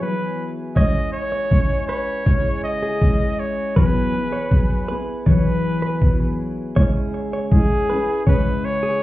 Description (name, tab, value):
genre	acoustic pop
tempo	80 BPM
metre	4/4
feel	straight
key	unclear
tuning	A4 = 440 Hz
part	bright trumpet	melody	0.0-9.0 s	G#4 to D#5	-24 LUFS	equal	none
part	picked steel-string acoustic guitar	accompaniment	0.0-9.0 s	C#3 to G#4	-22 LUFS	left 1 dB	double-tracked left and right
part	direct-recorded clean electric guitar	arpeggios	0.8-9.0 s	G#4 to C#5	-28 LUFS	right 1 dB	digital delay
part	electronic kick drum	drums	0.8-8.4 s	none	-17 LUFS	equal	overdrive
room	moderate small room reverb, RT60 0.5 s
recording	heard muffled through a wall, club reverb, EQ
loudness	-17 LUFS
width	side -16 dB against mid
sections	0.0-9.0 A section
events	none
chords	0.0 Eadd9; 0.8 C#m; 3.8 Eadd9; 6.8 C#m